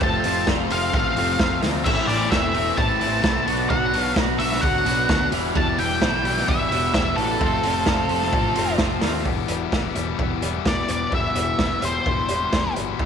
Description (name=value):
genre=indie rock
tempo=130 BPM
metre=4/4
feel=straight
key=unclear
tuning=A4 = 440 Hz
part: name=octave-fuzz lead guitar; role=melody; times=0.0-12.7 s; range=A4 to A5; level=-24 LUFS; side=equal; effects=distortion, tape echo
part: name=tonewheel organ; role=sustained chords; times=0.0-9.2 s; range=F#4 to C6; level=-35 LUFS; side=right 1 dB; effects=none
part: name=crunchy overdriven guitar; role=riff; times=0.0-13.1 s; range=E2 to F#4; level=-26 LUFS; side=left 13 dB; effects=none
part: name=twangy electric guitar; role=riff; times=0.0-13.1 s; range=E2 to F#4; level=-28 LUFS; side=right 13 dB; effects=wide subtle chorus
part: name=growling picked electric bass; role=bass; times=0.0-13.1 s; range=E1 to D#2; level=-29 LUFS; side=right 1 dB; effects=overdrive, tube saturation
part: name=raw garage drum kit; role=drums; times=0.0-13.1 s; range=crash cymbal, hi-hat, kick drum, snare drum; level=-24 LUFS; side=right 1 dB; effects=none
room=light reverb, small room ambience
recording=1960s-style stereo with parts hard left and right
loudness=-19 LUFS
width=side -7 dB against mid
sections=0.0-9.3 A section; 9.3-13.1 B section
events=none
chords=0.0 F; 1.9 Amadd9; 3.5 Bm; 5.3 Em7; 7.4 F; 9.3 Em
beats=| 0.01 0.47 0.94 1.40 | 1.86 2.32 2.78 3.25 | 3.71 4.17 4.63 5.09 | 5.55 6.02 6.48 6.94 | 7.40 7.87 8.33 8.79 | 9.26 9.72 10.19 10.66 | 11.12 11.59 12.06 12.53 | 12.99